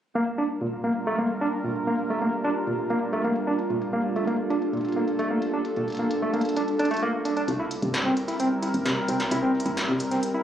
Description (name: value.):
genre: IDM.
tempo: 131 BPM.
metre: 4/4.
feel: straight.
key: Bb major.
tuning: A4 = 440 Hz.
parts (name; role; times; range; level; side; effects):
warbly tape-like pad; sustained chords; 0.3-10.4 s; G3 to Bb4; -28 LUFS; equal; chorus, built-in reverb, phaser.
barky tine electric piano; arpeggios; 0.2-10.4 s; Bb2 to E4; -26 LUFS; right 1 dB; overdrive, low-pass filter, tape echo.
industrial drum kit; drums; 0.2-10.3 s; hi-hat, snare drum; -32 LUFS; equal; low-pass filter on hats, low-pass filter on snare, ping-pong delay.
woody FM bass; bass; 7.5-10.2 s; G1 to C2; -30 LUFS; equal; none.
room: moderate echo chamber reverb, RT60 2.0 s.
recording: recorded on a phone in the room, club reverb.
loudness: -23 LUFS.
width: side -10 dB against mid.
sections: 0.2-10.4 A section.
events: filter sweep on drum 0.2-10.4.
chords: 0.2 Bb6; 7.5 C7.